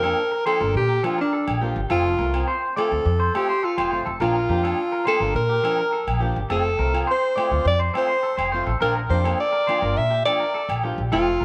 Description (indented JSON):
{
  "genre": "highlife guitar band",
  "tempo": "104 BPM",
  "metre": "4/4",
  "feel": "straight",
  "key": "unclear",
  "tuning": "A4 = 439 Hz",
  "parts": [
    { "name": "breathy alto saxophone", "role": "melody", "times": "0.0-11.4 s", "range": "D4 to E5", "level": "-25 LUFS", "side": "equal", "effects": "none" },
    { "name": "fingerpicked plugged-in swing-style acoustic guitar", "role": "accompaniment", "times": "0.0-11.4 s", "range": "F3 to F4", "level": "-34 LUFS", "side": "equal", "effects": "none" },
    { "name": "clean electric guitar", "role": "arpeggios", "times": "0.0-11.4 s", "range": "G4 to D5", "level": "-30 LUFS", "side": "equal", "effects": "lush chorus, slapback echo" },
    { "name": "upright bass", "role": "bass", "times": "0.0-11.4 s", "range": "F1 to Bb2", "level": "-27 LUFS", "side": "equal", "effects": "none" },
    { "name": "agogo bells", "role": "percussion", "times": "0.0-11.3 s", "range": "none", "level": "-32 LUFS", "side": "equal", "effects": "none" }
  ],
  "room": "moderate echo chamber reverb, RT60 1.8 s, studio reverb",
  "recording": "none",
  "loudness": "-22 LUFS",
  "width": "mono",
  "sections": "0.0-11.4 A section",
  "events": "none",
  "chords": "0.0 Bb; 1.9 F; 4.2 Bb; 6.5 F; 8.8 Bb"
}